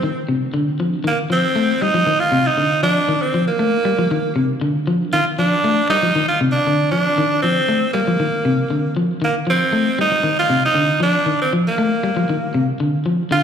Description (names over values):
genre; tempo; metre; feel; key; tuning
afrobeat; 117 BPM; 4/4; straight; C dorian; A4 = 439 Hz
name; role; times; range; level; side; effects
raspy tenor saxophone; melody; 0.0-13.4 s; Bb3 to F4; -18 LUFS; right 2 dB; slapback echo
electric guitar at the edge of break-up; arpeggios; 0.0-13.4 s; C3 to A3; -19 LUFS; left 2 dB; slapback echo
room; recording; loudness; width
moderate lush hall reverb, RT60 2.9 s; live gig heard through the venue's PA, club reverb; -15 LUFS; side -8 dB against mid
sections
0.0-1.1 A section; 1.1-13.4 B section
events
none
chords
0.0 Cmadd9; 1.1 Cm11